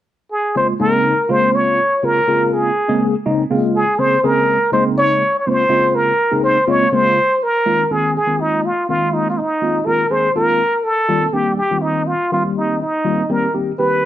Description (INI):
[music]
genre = jazz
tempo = 245 BPM (eighths)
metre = 7/8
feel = straight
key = Bb minor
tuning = A4 = 441 Hz
[part]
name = trumpet with plunger mute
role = melody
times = 0.3-14.1 s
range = Eb4 to Db5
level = -15 LUFS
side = equal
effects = none
[part]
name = mellow tine electric piano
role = accompaniment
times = 0.6-14.0 s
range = Db3 to F5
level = -18 LUFS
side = left 1 dB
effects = medium stereo tremolo, phaser
[sound]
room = moderate club reverb, RT60 0.7 s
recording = none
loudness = -14 LUFS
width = side -12 dB against mid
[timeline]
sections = 0.3-7.2 A section; 7.2-14.1 B section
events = tine electric piano fill 6.4-7.2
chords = 0.3 Bbm9; 7.2 Bb9sus4; 10.6 F9sus4